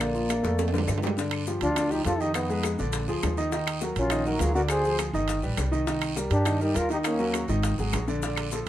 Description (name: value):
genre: Afro-Cuban jazz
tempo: 204 BPM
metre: 4/4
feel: straight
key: unclear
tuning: A4 = 439 Hz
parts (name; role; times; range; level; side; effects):
- breathy trombone; melody; 0.0-7.5 s; Bb3 to Ab4; -28 LUFS; equal; none
- concert flute; second line; 0.0-7.5 s; Db4 to D5; -34 LUFS; left 3 dB; none
- warm concert grand piano; accompaniment; 0.0-8.7 s; D3 to Eb5; -30 LUFS; equal; none
- upright bass; bass; 0.0-8.7 s; G1 to G2; -29 LUFS; equal; none
- bongos; percussion; 0.0-8.7 s; none; -36 LUFS; left 5 dB; none
- claves; percussion; 0.0-8.5 s; none; -38 LUFS; left 6 dB; none
- guiro; percussion; 0.0-8.7 s; none; -42 LUFS; right 7 dB; none
- maracas; percussion; 0.0-8.7 s; none; -42 LUFS; left 6 dB; none
- timbales; percussion; 0.0-8.7 s; none; -34 LUFS; right 8 dB; none
room: light reverb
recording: none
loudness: -24 LUFS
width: side -12 dB against mid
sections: 0.0-1.2 A section; 1.2-8.7 B section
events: drum fill 0.4-1.2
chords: 0.0 Bbmaj7; 1.2 G5; 2.4 Fm7b5; 2.9 Bb7; 3.5 Ebm9; 4.7 Dm7b5; 5.3 Gaug; 5.9 Cm9; 7.1 Ebm7; 7.6 Absus2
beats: | 0.01 0.30 0.59 0.89 | 1.18 1.47 1.77 2.06 | 2.35 2.65 2.94 3.23 | 3.53 3.82 4.11 4.41 | 4.70 5.00 5.29 5.58 | 5.88 6.17 6.46 6.76 | 7.05 7.34 7.64 7.93 | 8.22 8.52